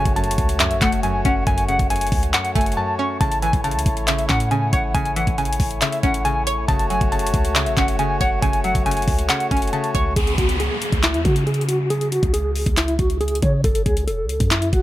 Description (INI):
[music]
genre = hip hop, trap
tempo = 138 BPM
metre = 4/4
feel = half-time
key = C# minor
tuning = A4 = 441 Hz
[part]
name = mellow electric guitar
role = melody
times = 0.0-14.8 s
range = E4 to C#6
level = -23 LUFS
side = equal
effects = tremolo, low-pass filter, ping-pong delay
[part]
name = string-like resonator pluck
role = accompaniment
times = 0.0-10.2 s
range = F#2 to C#5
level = -26 LUFS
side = right 1 dB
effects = chorus, phaser
[part]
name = pedal harmonium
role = sustained chords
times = 0.0-10.1 s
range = A3 to C#5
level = -28 LUFS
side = left 2 dB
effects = none
[part]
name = warm 808-style bass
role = bass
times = 0.0-14.8 s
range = E1 to C#3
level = -24 LUFS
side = equal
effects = none
[part]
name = trap drum kit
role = drums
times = 0.1-14.8 s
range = handclaps, hi-hat, kick drum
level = -21 LUFS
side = equal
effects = none
[part]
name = downlifter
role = sound effects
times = 10.2-13.6 s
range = none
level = -29 LUFS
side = left 1 dB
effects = none
[sound]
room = little or no reverb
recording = none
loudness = -17 LUFS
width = side -14 dB against mid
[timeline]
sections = 0.0-10.2 A section; 10.2-14.8 B section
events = break 2.8-3.2; filter sweep on clean electric guitar 10.2-14.8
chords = 0.0 F#m; 3.2 A; 6.7 F#m; 10.2 C#5; 13.6 F#m